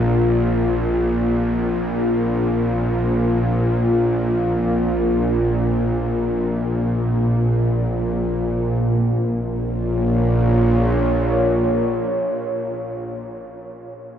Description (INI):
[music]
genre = dark ambient drone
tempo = free time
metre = none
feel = none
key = unclear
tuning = A4 = 440 Hz
[part]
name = deep dark ambient pad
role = sustained chords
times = 0.0-13.5 s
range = Bb3 to Db5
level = -22 LUFS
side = left 1 dB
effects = chorus, built-in reverb
[part]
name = bowed-like drone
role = drone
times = 0.0-13.1 s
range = Bb1 to Bb2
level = -19 LUFS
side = equal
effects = built-in reverb
[sound]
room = wet huge ambient reverb, RT60 8.5 s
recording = cassette tape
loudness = -17 LUFS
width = side -9 dB against mid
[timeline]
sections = 0.0-8.8 A section; 8.8-13.2 B section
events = none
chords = 0.0 Bbsus2; 8.8 Bbm